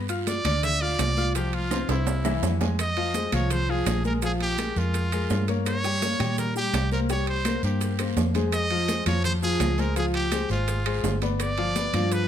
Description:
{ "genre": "latin, salsa", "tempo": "167 BPM", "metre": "4/4", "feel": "straight", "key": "F minor", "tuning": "A4 = 440 Hz", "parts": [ { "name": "clear grand piano", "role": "accompaniment", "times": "0.0-12.2 s", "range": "E3 to F6", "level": "-29 LUFS", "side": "left 4 dB", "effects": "none" }, { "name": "vintage muted fingered electric bass", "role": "bass", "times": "0.0-12.3 s", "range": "G1 to Bb2", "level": "-27 LUFS", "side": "right 1 dB", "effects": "none" }, { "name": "congas", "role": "percussion", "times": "0.1-12.3 s", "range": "none", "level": "-34 LUFS", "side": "equal", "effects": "none" }, { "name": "maracas", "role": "percussion", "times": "0.1-12.3 s", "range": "none", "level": "-40 LUFS", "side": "right 11 dB", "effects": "none" }, { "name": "timbales", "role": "percussion", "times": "0.1-12.3 s", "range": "none", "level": "-34 LUFS", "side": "right 10 dB", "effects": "none" }, { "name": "bright trumpet", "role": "melody", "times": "0.3-12.3 s", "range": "E4 to E5", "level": "-29 LUFS", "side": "right 1 dB", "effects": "none" }, { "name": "bongos", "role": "percussion", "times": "0.3-12.3 s", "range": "none", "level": "-38 LUFS", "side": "left 3 dB", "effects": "none" }, { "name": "guiro", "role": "percussion", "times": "0.3-12.3 s", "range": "none", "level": "-42 LUFS", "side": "right 8 dB", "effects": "none" }, { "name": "claves", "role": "percussion", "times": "0.4-12.1 s", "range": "none", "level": "-44 LUFS", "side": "left 4 dB", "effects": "none" } ], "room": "moderate large studio reverb, RT60 1.1 s", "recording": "none", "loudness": "-22 LUFS", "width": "side -9 dB against mid", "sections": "0.0-2.8 A section; 2.8-12.3 B section", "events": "drum fill 1.7-2.8, 8.0-8.5", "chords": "0.0 G7(no3); 1.4 Csus4; 2.1 C; 2.8 Fm7; 4.2 Bb7(no3); 5.7 Gdim; 7.1 C5; 8.5 Fm7; 10.0 Dbmaj7; 11.4 G7" }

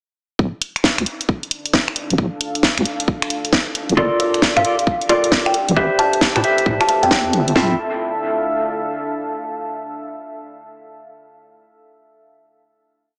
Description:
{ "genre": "UK garage, two-step garage", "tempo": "134 BPM", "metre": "4/4", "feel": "swing 64% on 16ths", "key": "D minor", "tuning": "A4 = 439 Hz", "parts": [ { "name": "deep soft wobble bass", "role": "bass", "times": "0.4-7.8 s", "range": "D1 to A2", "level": "-22 LUFS", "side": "equal", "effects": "chorus" }, { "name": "garage drum kit", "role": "drums", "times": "0.4-7.7 s", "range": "kick drum, snare drum, toms", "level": "-21 LUFS", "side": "equal", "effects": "studio ambience" }, { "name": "deep dark ambient pad", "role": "texture", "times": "1.5-9.3 s", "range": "D4 to A5", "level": "-28 LUFS", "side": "equal", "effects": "chorus, built-in reverb, sidechain pumping" }, { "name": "garage drum kit", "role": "drums", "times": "0.6-7.5 s", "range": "finger snaps, hi-hat, snare drum", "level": "-21 LUFS", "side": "equal", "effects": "studio ambience" }, { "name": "mellow electric guitar", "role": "stabs", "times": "4.0-7.7 s", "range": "C4 to A5", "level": "-21 LUFS", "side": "equal", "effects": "dub echo" }, { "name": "buzzing kalimba", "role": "melody", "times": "4.2-7.6 s", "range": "D5 to A5", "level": "-23 LUFS", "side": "equal", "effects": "dub echo" } ], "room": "moderate plate reverb, RT60 2.0 s", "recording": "heavily compressed radio sound, small speaker sound", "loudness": "-18 LUFS", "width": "mono", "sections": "0.4-7.6 groove; 7.6-9.3 final chord", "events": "fade-in on ambient pad 0.4-7.6", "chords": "0.4 Dm; 3.8 Gm7; 5.5 Am7; 7.6 Dm" }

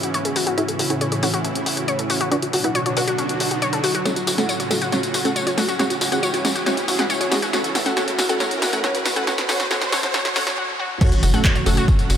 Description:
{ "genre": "uplifting trance", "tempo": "138 BPM", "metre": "4/4", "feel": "straight", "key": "F# minor", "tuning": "A4 = 439 Hz", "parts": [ { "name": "wide unison pluck", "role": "melody", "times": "0.0-12.2 s", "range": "G#3 to F#5", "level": "-24 LUFS", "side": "right 1 dB", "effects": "sidechain pumping, tape echo" }, { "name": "supersaw pad", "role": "sustained chords", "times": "0.0-12.2 s", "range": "G#2 to F#4", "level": "-27 LUFS", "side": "right 1 dB", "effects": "sidechain pumping" }, { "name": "wide unison pluck", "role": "arpeggios", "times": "0.0-12.2 s", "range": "C#4 to F#5", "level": "-25 LUFS", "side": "left 3 dB", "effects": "sidechain pumping, tape echo" }, { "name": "tight sequencer bass", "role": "bass", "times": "0.0-12.2 s", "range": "F#1 to C#2", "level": "-24 LUFS", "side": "equal", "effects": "none" }, { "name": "punchy analog drum machine", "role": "drums", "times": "0.0-12.2 s", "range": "crash cymbal, handclaps, hi-hat, snare drum, tambourine", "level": "-24 LUFS", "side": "equal", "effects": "none" }, { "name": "riser and impact", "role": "sound effects", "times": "0.0-12.2 s", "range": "none", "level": "-28 LUFS", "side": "right 1 dB", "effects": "none" }, { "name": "electronic kick drum", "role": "drums", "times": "11.0-12.0 s", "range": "none", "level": "-17 LUFS", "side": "equal", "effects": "none" } ], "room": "moderate huge ambient reverb, RT60 4.9 s", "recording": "high-pass filter", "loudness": "-18 LUFS", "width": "side -9 dB against mid", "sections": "0.0-11.0 A section; 11.0-12.2 B section", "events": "build-up 0.0-11.0; riser 0.0-10.6; filter sweep on synth pluck 0.0-11.0; filter sweep on synth arpeggio sound 0.0-11.0; drum fill 4.1-10.6; break 10.6-11.0; drop 11.0-12.2; impact 11.0-12.2", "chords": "0.0 C#m; 0.6 A; 2.3 Bm; 4.1 F#m; 5.8 C#m; 7.5 A; 9.3 Bm; 11.0 F#m" }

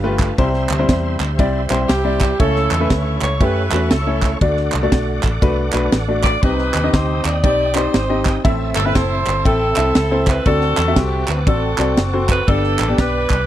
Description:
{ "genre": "uptempo gospel", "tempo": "119 BPM", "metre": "4/4", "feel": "swing 63% on 8ths", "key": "unclear", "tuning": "A4 = 440 Hz", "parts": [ { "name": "clear concert grand piano", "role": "accompaniment", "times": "0.0-13.3 s", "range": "G2 to G5", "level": "-20 LUFS", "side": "left 1 dB", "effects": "none" }, { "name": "bright tonewheel organ", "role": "sustained chords", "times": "0.0-13.5 s", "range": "C4 to E6", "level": "-28 LUFS", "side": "right 2 dB", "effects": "slow rotary speaker, chorus vibrato" }, { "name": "vintage muted fingered electric bass", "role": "bass", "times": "0.0-13.5 s", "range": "F#1 to F#2", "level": "-21 LUFS", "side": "equal", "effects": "none" }, { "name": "crisp fusion drum kit", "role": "drums", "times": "0.2-13.4 s", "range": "kick drum, ride cymbal, snare drum", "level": "-17 LUFS", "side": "equal", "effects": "none" }, { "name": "group handclap", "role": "percussion", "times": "0.2-13.4 s", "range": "none", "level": "-24 LUFS", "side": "right 6 dB", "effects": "none" }, { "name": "clear saxophone section", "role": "melody", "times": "1.9-13.5 s", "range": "C4 to D5", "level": "-20 LUFS", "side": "right 1 dB", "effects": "none" } ], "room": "small room reverb", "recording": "dry, close 1970s-style studio recording", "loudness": "-14 LUFS", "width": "side -12 dB against mid", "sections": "0.0-13.5 A section", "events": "none", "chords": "0.4 C; 2.4 A/C#; 4.4 D; 6.4 Cm; 8.4 Am; 10.5 D7; 12.5 G" }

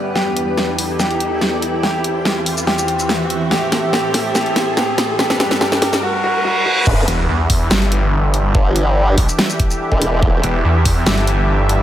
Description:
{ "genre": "heavy wobble dubstep", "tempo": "143 BPM", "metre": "4/4", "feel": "half-time", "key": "E minor", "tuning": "A4 = 439 Hz", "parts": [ { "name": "clear grand piano", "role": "melody", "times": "0.0-6.9 s", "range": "F#4 to G4", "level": "-21 LUFS", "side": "left 1 dB", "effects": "digital delay" }, { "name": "supersaw pad", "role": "sustained chords", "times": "0.0-11.8 s", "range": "E2 to E5", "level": "-23 LUFS", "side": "equal", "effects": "vintage 12-bit sampler grit, sidechain pumping, low-pass filter" }, { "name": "riser, reverse cymbal and sub drop", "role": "sound effects", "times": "0.0-8.5 s", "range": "none", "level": "-23 LUFS", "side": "right 2 dB", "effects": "none" }, { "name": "granular cloud pad", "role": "texture", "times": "0.0-11.8 s", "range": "E3 to G5", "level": "-26 LUFS", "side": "right 1 dB", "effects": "built-in reverb, sidechain pumping" }, { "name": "dubstep drum kit", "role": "drums", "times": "0.2-11.8 s", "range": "crash cymbal, hi-hat, shaker, snare drum", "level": "-19 LUFS", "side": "equal", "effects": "studio reverb" }, { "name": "formant-sweep wobble bass", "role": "bass", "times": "6.9-10.4 s", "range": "E1 to G1", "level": "-15 LUFS", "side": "equal", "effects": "chorus, overdrive" }, { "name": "electronic kick drum", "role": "drums", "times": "6.9-10.9 s", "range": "none", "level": "-16 LUFS", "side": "equal", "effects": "studio reverb" }, { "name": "snarling distorted saw bass", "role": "bass", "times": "7.1-11.8 s", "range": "E1 to E2", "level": "-15 LUFS", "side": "equal", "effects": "distortion, overdrive" } ], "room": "light reverb", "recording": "none", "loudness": "-14 LUFS", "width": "side -11 dB against mid", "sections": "0.0-6.9 A section; 6.9-11.8 B section", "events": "build-up 0.0-6.9; riser 0.0-6.9; filter sweep on supersaw synth 0.0-6.9; drum fill 0.2-6.0; reverse cymbal 6.0-6.9; drop 6.9-11.8; impact 6.9-8.5", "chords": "0.2 Em; 1.8 C/E; 3.5 Am; 5.2 G; 6.0 N.C.; 6.9 Em7" }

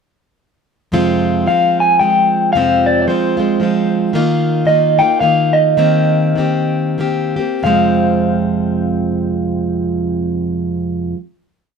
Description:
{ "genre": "acoustic folk duo or small band", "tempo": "88-113 BPM", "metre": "3/4", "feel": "swing 59% on 8ths", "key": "F minor", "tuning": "A4 = 440 Hz", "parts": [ { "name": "picked plugged-in steel-string acoustic guitar", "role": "accompaniment", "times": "0.9-11.2 s", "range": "F2 to G4", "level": "-15 LUFS", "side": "right 1 dB", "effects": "none" }, { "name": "electric guitar through a small old amp", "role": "melody", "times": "1.5-10.9 s", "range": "C5 to Ab5", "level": "-14 LUFS", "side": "left 1 dB", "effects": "tremolo, plate reverb" } ], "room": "moderate studio reverb, RT60 0.6 s", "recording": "dark, warm production", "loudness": "-13 LUFS", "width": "side -6 dB against mid", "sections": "0.9-7.6 verse; 7.6-11.7 final chord", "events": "slowing down 4.1-7.6", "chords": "0.9 Fm; 4.1 Ebsus2; 5.8 Cm7/Eb; 7.6 Fm" }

